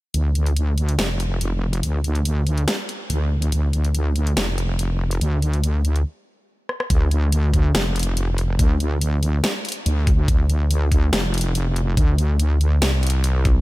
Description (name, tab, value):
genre	deep dubstep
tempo	142 BPM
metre	4/4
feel	half-time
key	D minor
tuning	A4 = 440 Hz
part	wobble bass	bass	0.1-13.6 s	F1 to D2	-19 LUFS	equal	chorus
part	dubstep drum kit	drums	0.1-13.5 s	hi-hat, rim click, snare drum	-26 LUFS	equal	none
part	electronic kick drum	drums	6.9-13.5 s	none	-18 LUFS	equal	none
room	digital ambience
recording	none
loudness	-18 LUFS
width	side -19 dB against mid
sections	0.1-6.9 A section; 6.9-13.6 B section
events	stop 6.1-6.9; drum fill 6.7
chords	none